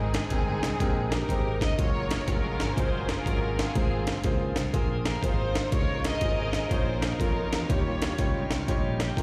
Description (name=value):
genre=uptempo gospel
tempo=122 BPM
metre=4/4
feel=swing 65% on 8ths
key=Ab major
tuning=A4 = 440 Hz
part: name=warm studio string section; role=melody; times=0.0-9.2 s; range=C4 to Eb5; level=-35 LUFS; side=equal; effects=slapback echo, tape echo
part: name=warm concert grand piano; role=accompaniment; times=0.0-9.2 s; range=Ab2 to G5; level=-36 LUFS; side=equal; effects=slapback echo
part: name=modern bright fingered electric bass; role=bass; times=0.0-9.2 s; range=F1 to F2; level=-33 LUFS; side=equal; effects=none
part: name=breakbeat sampler-style drum kit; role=drums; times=0.1-9.2 s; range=hi-hat, kick drum, snare drum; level=-31 LUFS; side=equal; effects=none
part: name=bright tonewheel organ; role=sustained chords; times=1.8-9.2 s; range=Eb3 to Ab4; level=-44 LUFS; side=equal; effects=none
room=light reverb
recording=live gig heard through the venue's PA, recital hall reverb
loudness=-27 LUFS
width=mono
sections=0.0-9.2 A section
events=none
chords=0.0 Abmaj9; 1.8 Gbmaj9; 3.8 Ab69; 5.7 Db69; 7.7 Eb9